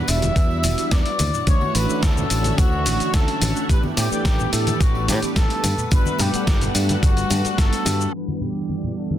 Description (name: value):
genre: nu-disco, nu disco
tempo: 108 BPM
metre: 4/4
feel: straight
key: E dorian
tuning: A4 = 440 Hz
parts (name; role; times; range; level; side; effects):
- muted trumpet section; melody; 0.0-9.2 s; F#4 to E5; -26 LUFS; left 2 dB; tape echo
- mellow synth brass; accompaniment; 0.0-9.2 s; E3 to F#5; -27 LUFS; right 2 dB; chorus, slapback echo
- string machine, full ensemble; sustained chords; 0.0-9.2 s; D3 to F#5; -30 LUFS; equal; phaser, ensemble chorus, sidechain pumping
- fingered electric bass; bass; 0.1-8.1 s; E1 to A2; -23 LUFS; equal; sidechain pumping
- dusty soul sampler-style drum kit; drums; 0.1-9.2 s; cabasa, hi-hat, snare drum; -26 LUFS; left 1 dB; none
- tambourine, congas and bongos; percussion; 0.1-9.2 s; none; -30 LUFS; left 2 dB; none
- electronic kick drum; drums; 0.4-7.7 s; none; -18 LUFS; equal; none
room: light reverb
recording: dense, heavily limited modern master, low-pass filter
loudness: -18 LUFS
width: side -11 dB against mid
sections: 0.0-8.1 A section; 8.1-9.2 B section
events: filter sweep 8.1-9.2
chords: 0.0 Em9; 1.2 Dmaj9; 3.7 A9sus4; 5.6 Gmaj9; 8.1 Em9